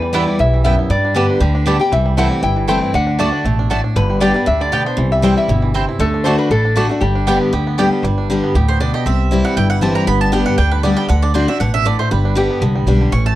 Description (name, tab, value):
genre	bluegrass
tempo	236 BPM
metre	4/4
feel	straight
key	G major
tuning	A4 = 440 Hz
part	bluegrass banjo	melody	0.0-13.4 s	D3 to G4	-24 LUFS	right 6 dB	none
part	lap resonator guitar	melody	0.0-7.7 s	G4 to G5	-20 LUFS	left 2 dB	none
part	picked steel-string acoustic guitar	accompaniment	0.0-13.4 s	E2 to G4	-18 LUFS	left 2 dB	none
part	upright bass	bass	0.0-13.4 s	G1 to G2	-17 LUFS	equal	none
part	mandolin	stabs	0.1-13.4 s	A3 to C#6	-21 LUFS	right 3 dB	none
room	studio ambience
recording	dry, close 1970s-style studio recording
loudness	-13 LUFS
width	side -14 dB against mid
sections	0.0-8.0 A section; 8.0-13.4 B section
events	mandolin solo 8.0-13.4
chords	0.0 Em; 0.9 Gadd9; 1.9 C6; 2.9 D; 4.0 G; 5.0 C; 6.0 D; 7.0 G; 9.1 C; 10.1 G; 11.1 D; 12.1 G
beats	0.14 0.39 0.65 | 0.90 1.16 1.41 1.67 | 1.92 2.17 2.43 2.69 | 2.94 3.19 3.45 3.71 | 3.96 4.22 4.47 4.73 | 4.98 5.24 5.49 5.75 | 6.00 6.26 6.51 6.77 | 7.02 7.28 7.53 7.79 | 8.04 8.30 8.55 8.80 | 9.06 9.31 9.57 9.82 | 10.08 10.33 10.59 10.84 | 11.10 11.35 11.61 11.86 | 12.11 12.37 12.62 12.88 | 13.13